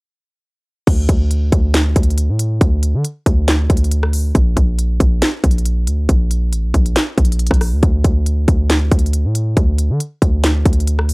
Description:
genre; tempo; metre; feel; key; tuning
hip hop, trap; 138 BPM; 4/4; half-time; unclear; A4 = 440 Hz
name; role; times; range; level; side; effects
hard-hitting 808-style bass; bass; 0.9-11.1 s; A1 to D3; -15 LUFS; equal; none
trap drum kit; drums; 0.9-11.1 s; crash cymbal, handclaps, hi-hat, kick drum, rim click, snare drum; -16 LUFS; equal; none
room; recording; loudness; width
little or no reverb; dry, gritty hardware recording; -13 LUFS; side -30 dB against mid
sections
0.9-11.1 A section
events
break 0.0-0.9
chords
none

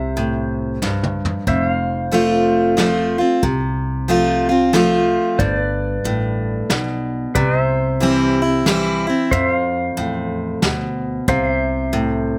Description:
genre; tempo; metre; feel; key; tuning
honky-tonk and classic country; 92 BPM; 3/4; swing 62% on 8ths; unclear; A4 = 443 Hz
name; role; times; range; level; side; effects
picked steel-string acoustic guitar; accompaniment; 0.0-12.4 s; F2 to F4; -20 LUFS; equal; none
pedal steel guitar; sustained chords; 0.0-12.4 s; B4 to F5; -26 LUFS; equal; subtle chorus
upright bass; bass; 0.0-12.4 s; F1 to F2; -27 LUFS; equal; none
vintage brush drum kit; drums; 0.2-12.1 s; hi-hat, kick drum, snare drum, toms; -25 LUFS; equal; none
room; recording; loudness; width
little or no reverb; none; -18 LUFS; mono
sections
0.0-1.5 A section; 1.5-12.4 B section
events
drum fill 0.8-1.5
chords
0.0 C; 1.5 F; 5.4 G; 7.4 C; 9.3 F; 11.3 C

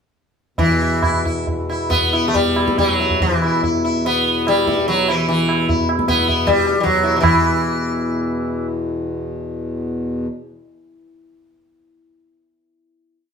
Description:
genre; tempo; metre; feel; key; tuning
indian classical, Hindustani; 135-178 BPM; 4/4; straight; unclear; A4 = 439 Hz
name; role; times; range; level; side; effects
sitar; melody; 0.6-8.7 s; E3 to E4; -18 LUFS; left 1 dB; none
hand-pumped harmonium; drone; 0.6-10.3 s; E2 to B2; -24 LUFS; left 1 dB; none
tabla; percussion; 0.6-7.4 s; none; -21 LUFS; right 2 dB; none
room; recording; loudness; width
wet stone room reverb, RT60 1.0 s; band playing live in one room; -16 LUFS; side -6 dB against mid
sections
0.6-7.2 theme; 7.2-10.1 final chord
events
speeding up 0.6-10.1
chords
none

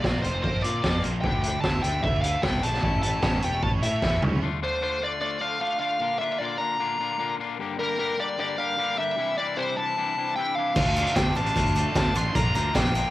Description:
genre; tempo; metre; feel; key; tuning
indie rock; 151 BPM; 4/4; straight; D minor; A4 = 440 Hz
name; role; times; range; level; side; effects
smooth overdriven lead guitar; melody; 0.0-13.1 s; Bb4 to C6; -27 LUFS; left 1 dB; cassette tape, analog delay
scooped high-gain guitar; riff; 0.0-4.4, 10.8-13.1 s; Bb2 to E5; -34 LUFS; right 7 dB; distortion, analog chorus, analog delay
twangy electric guitar; riff; 0.0-13.1 s; G2 to G4; -32 LUFS; left 6 dB; none
fuzz fingered electric bass; bass; 0.0-4.4, 10.8-13.0 s; E1 to Bb2; -28 LUFS; equal; overdrive
raw garage drum kit; drums; 0.0-4.3, 10.8-13.0 s; crash cymbal, hi-hat, kick drum, snare drum, toms; -26 LUFS; equal; cassette tape
soft string machine; sustained chords; 4.7-13.1 s; D4 to G5; -41 LUFS; right 1 dB; ensemble chorus
glockenspiel with hard plastic mallets; second line; 10.4-13.1 s; D6 to A6; -39 LUFS; right 9 dB; none
tube shaker; percussion; 10.8-13.0 s; none; -54 LUFS; left 10 dB; none
room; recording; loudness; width
little or no reverb; home recording on cassette; -23 LUFS; side -15 dB against mid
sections
0.0-4.4 A section; 4.4-13.1 B section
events
drum fill 4.0-4.4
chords
0.0 Bbsus2; 1.2 Dmadd9; 2.8 A; 4.4 Dm; 6.0 Bb; 7.6 Gm; 9.2 Cadd9; 10.8 Dm; 12.4 Bb

